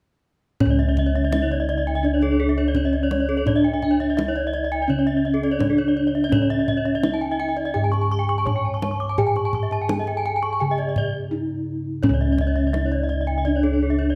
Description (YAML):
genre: Balinese gamelan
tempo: 84 BPM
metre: 4/4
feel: straight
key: C# pelog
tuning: A4 = 439 Hz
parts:
  - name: gamelan-type bronze metallophone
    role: melody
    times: 0.6-14.2 s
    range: C#4 to C#5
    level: -26 LUFS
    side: equal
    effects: none
  - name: gamelan-type bronze metallophone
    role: arpeggios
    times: 0.6-14.1 s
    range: A4-40c to D6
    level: -30 LUFS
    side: equal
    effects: none
  - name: gamelan-type bossed gongs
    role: bass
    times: 0.6-14.2 s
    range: C#2 to G#4-45c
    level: -26 LUFS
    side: equal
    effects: none
  - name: kendang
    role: percussion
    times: 0.6-13.7 s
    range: none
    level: -29 LUFS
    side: equal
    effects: none
  - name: gamelan-type bronze metallophone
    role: arpeggios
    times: 0.7-14.2 s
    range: A4-40c to C#6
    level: -32 LUFS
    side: equal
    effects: none
room: moderate recital hall reverb, RT60 1.4 s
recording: none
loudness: -22 LUFS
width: mono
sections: 0.6-12.0 A section; 12.0-14.2 A section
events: break 11.0-12.0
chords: none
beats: | 0.61 1.32 2.04 2.75 | 3.47 4.18 4.89 5.61 | 6.32 7.04 7.75 8.47 | 9.18 9.89 10.61 11.32 | 12.04 12.75 13.47